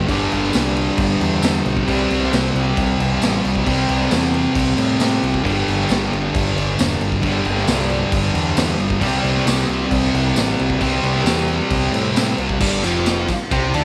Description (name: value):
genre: garage rock duo or trio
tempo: 134 BPM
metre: 4/4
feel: straight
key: unclear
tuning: A4 = 439 Hz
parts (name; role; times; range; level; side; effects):
- thick fuzz guitar; riff; 0.0-13.8 s; F2 to D4; -21 LUFS; equal; distortion
- growling picked electric bass; bass; 0.0-13.8 s; E1 to A2; -25 LUFS; equal; overdrive
- raw garage drum kit; drums; 0.1-13.8 s; crash cymbal, kick drum, ride cymbal, snare drum; -24 LUFS; equal; none
- tambourine; percussion; 0.5-13.8 s; none; -34 LUFS; equal; none
room: light reverb, studio reverb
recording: none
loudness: -18 LUFS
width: mono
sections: 0.0-12.6 A section; 12.6-13.8 B section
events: none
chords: 0.0 G5; 1.9 C5; 5.4 G5; 9.0 C5; 12.6 G5